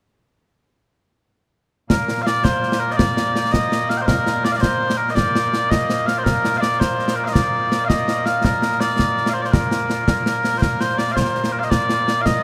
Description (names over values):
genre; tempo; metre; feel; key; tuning
scottish traditional, Scottish pipe music; 110 BPM (dotted quarters); 6/8; straight; Bb major; A4 = 440 Hz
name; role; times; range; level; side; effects
mellow small bagpipes; melody; 1.9-12.4 s; Bb2 to G5; -21 LUFS; equal; none
concert snare drum and concert bass drum; drums; 1.9-12.3 s; none; -23 LUFS; equal; none
room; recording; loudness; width
wet huge ambient reverb, RT60 7.3 s; heard from further back in the room; -19 LUFS; mono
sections
1.9-10.6 A section; 10.6-12.4 A section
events
none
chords
none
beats
| 1.90 2.44 | 2.99 3.53 | 4.08 4.62 | 5.17 5.71 | 6.26 6.80 | 7.35 7.90 | 8.44 8.99 | 9.53 10.08 | 10.62 11.17 | 11.71 12.26